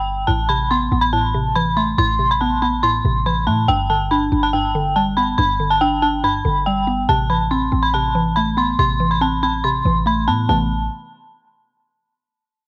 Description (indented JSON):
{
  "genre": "hip hop, trap",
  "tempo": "141 BPM",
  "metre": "4/4",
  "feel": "half-time",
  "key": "A minor",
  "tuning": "A4 = 439 Hz",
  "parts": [
    { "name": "dark detuned synth bell", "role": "melody", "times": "0.0-10.7 s", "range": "G5 to C6", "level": "-21 LUFS", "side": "equal", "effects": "chorus, tremolo, cassette tape, plate reverb" },
    { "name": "clean 808-style bass", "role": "bass", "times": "0.0-10.9 s", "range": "G1 to A2", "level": "-25 LUFS", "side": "equal", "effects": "none" },
    { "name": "mallet-like synth pluck", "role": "accompaniment", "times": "0.3-10.7 s", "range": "G2 to D4", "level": "-24 LUFS", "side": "equal", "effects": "chorus, cassette tape" }
  ],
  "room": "light reverb",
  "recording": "home recording on cassette",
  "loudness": "-18 LUFS",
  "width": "mono",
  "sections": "0.0-7.1 A section; 7.1-10.5 B section; 10.5-12.2 C section",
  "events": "none",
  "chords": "0.3 Amadd9; 3.7 G; 7.1 Amadd9",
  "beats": "| 0.28 0.70 1.13 1.55 | 1.98 2.41 2.83 3.26 | 3.68 4.11 4.53 4.96 | 5.38 5.81 6.24 6.66 | 7.09 7.51 7.94 8.36 | 8.79 9.21 9.64 10.07 | 10.49"
}